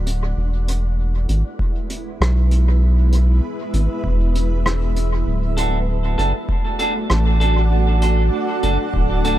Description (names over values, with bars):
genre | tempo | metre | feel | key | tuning
ambient dub | 98 BPM | 4/4 | swing 53% on 16ths | E mixolydian | A4 = 440 Hz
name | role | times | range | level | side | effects
granular cloud pad | sustained chords | 0.0-9.4 s | G#3 to F#5 | -25 LUFS | right 1 dB | built-in reverb
round analog bass | bass | 0.0-9.4 s | D1 to B1 | -16 LUFS | equal | none
soft brush drum kit | drums | 0.1-9.4 s | hi-hat, rim click | -26 LUFS | equal | dub echo
electronic kick drum | drums | 1.6-9.1 s | none | -22 LUFS | equal | overdrive
clean electric guitar | stabs | 5.6-9.4 s | D4 to A4 | -23 LUFS | right 1 dB | dub echo
room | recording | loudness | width
studio ambience | none | -16 LUFS | side -13 dB against mid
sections
0.0-9.4 A section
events
fade-in on ambient pad 0.0-9.4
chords
0.4 E; 5.3 D